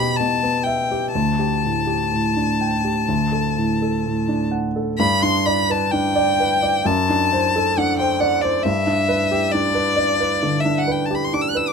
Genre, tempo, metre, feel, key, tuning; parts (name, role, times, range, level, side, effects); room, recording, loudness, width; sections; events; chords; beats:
classical, romantic duo for violin and grand piano; 61-70 BPM; 4/4; rubato; G major; A4 = 440 Hz
rich violin; melody; 0.0-11.7 s; D5 to F#6; -21 LUFS; left 4 dB
warm grand piano; accompaniment; 0.0-11.7 s; D2 to G5; -20 LUFS; right 1 dB
light reverb; close, detailed microphones; -17 LUFS; side -5 dB against mid
0.0-5.0 A section; 5.0-11.7 B section
0.0 Em; 1.1 Dsus4; 3.1 D; 5.0 G; 6.9 D7/F#; 8.6 G
0.19 | 1.13 2.11 3.07 4.04 | 4.99 5.93 6.85 7.76 | 8.64 9.53 10.41 11.32